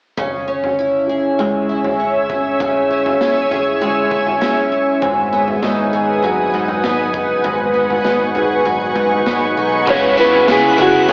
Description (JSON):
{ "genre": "dream pop", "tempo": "99 BPM", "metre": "4/4", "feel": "straight", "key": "C# minor", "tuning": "A4 = 440 Hz", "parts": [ { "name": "granular cloud pad", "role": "sustained chords", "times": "1.2-11.1 s", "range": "B4 to E6", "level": "-20 LUFS", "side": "equal", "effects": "built-in reverb, cassette tape" }, { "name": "picked twelve-string acoustic guitar", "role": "arpeggios", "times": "0.2-11.1 s", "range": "G#2 to G#4", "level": "-20 LUFS", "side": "equal", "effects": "lush chorus, cassette tape, analog delay" }, { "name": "raw garage drum kit", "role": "drums", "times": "0.2-11.1 s", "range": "crash cymbal, kick drum, snare drum, tambourine, toms", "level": "-28 LUFS", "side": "equal", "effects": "cassette tape" }, { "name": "picked electric bass", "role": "bass", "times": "5.0-11.1 s", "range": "F#1 to G#2", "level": "-29 LUFS", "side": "equal", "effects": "none" }, { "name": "mellow electric guitar", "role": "melody", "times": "9.9-11.1 s", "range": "F#4 to C#5", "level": "-15 LUFS", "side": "equal", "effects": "cassette tape" }, { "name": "cranked stack guitar", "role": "accompaniment", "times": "9.9-11.1 s", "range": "C#3 to E4", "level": "-20 LUFS", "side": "equal", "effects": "overdrive, harmonic tremolo, lush chorus, cassette tape" } ], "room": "moderate small room reverb, RT60 0.5 s", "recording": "home recording on cassette, AM radio sound", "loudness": "-16 LUFS", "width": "mono", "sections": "0.2-9.9 A section; 9.9-11.1 B section", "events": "none", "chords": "0.2 C#m; 5.0 G#m7; 9.9 C#m7" }